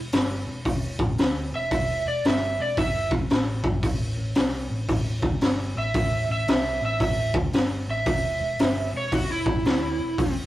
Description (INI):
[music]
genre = blues rock power trio and southern rock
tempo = 113 BPM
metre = 4/4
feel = swing 64% on 8ths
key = unclear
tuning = A4 = 440 Hz
[part]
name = hollow-body short-scale picked electric bass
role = bass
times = 0.0-10.5 s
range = E1 to D2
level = -30 LUFS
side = equal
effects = none
[part]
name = raw garage drum kit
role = drums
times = 0.1-10.3 s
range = hi-hat, kick drum, snare drum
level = -24 LUFS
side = equal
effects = none
[part]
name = overdriven slide guitar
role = melody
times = 1.6-10.3 s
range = E4 to E5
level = -26 LUFS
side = right 2 dB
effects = none
[sound]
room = light reverb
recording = rough rehearsal-room recording, warm saturation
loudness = -22 LUFS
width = side -15 dB against mid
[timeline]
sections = 0.0-10.5 A section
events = electric slide guitar solo 0.0-10.5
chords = 0.0 Em; 3.8 Am7; 8.1 Em7